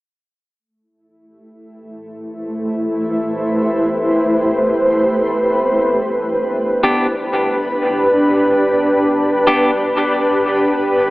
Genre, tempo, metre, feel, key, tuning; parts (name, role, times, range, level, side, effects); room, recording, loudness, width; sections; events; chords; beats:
ambient; free time; A minor; A4 = 440 Hz
granular cloud pad; sustained chords; 2.2-11.1 s; A3 to C5; -15 LUFS; equal; built-in reverb
clean electric guitar; stabs; 6.8-9.7 s; B3 to G4; -20 LUFS; equal; dub echo
wet huge ambient reverb, RT60 7.4 s; AM radio sound; -14 LUFS; side -20 dB against mid
0.6-11.1 A section
filter sweep on ambient pad 0.6-11.1
0.6 Am7; 5.9 G
free time